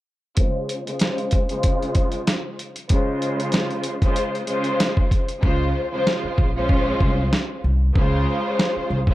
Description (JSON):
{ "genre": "hip hop, boom-bap hip-hop", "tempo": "95 BPM", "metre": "4/4", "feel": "swing 55% on 16ths", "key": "Db major", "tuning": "A4 = 439 Hz", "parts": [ { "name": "warm studio string section", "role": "accompaniment", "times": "0.4-9.1 s", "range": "Db3 to C5", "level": "-23 LUFS", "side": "equal", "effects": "high-pass filter, low-pass filter" }, { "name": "dusty soul sampler-style drum kit", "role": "drums", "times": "0.4-9.1 s", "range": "hi-hat, kick drum, snare drum", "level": "-20 LUFS", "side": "equal", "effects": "overdrive" }, { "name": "upright bass", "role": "bass", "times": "5.4-9.1 s", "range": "Bb1 to Db2", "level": "-22 LUFS", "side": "equal", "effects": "none" } ], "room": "small room ambience", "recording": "dark, warm production", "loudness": "-19 LUFS", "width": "side -16 dB against mid", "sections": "0.4-5.4 A section; 5.4-9.1 B section", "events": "filter sweep on string section 0.4-5.4; hi-hats muted 5.4-9.1", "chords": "0.4 Dbmaj7" }